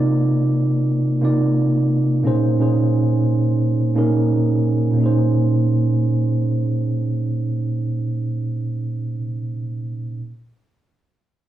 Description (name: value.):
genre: R&B.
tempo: 88 BPM.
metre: 4/4.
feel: swing 57% on 16ths.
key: Bb minor.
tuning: A4 = 440 Hz.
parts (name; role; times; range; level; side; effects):
tine electric piano; solo; 0.0-10.2 s; Bb2 to D5; -17 LUFS; right 1 dB; fast stereo tremolo.
room: wet studio reverb, RT60 0.5 s.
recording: home recording on cassette, small room reverb.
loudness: -17 LUFS.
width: side -12 dB against mid.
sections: 0.0-5.0 A section; 5.0-7.7 B section.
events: none.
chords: 0.0 Cm11; 2.2 Bbm11.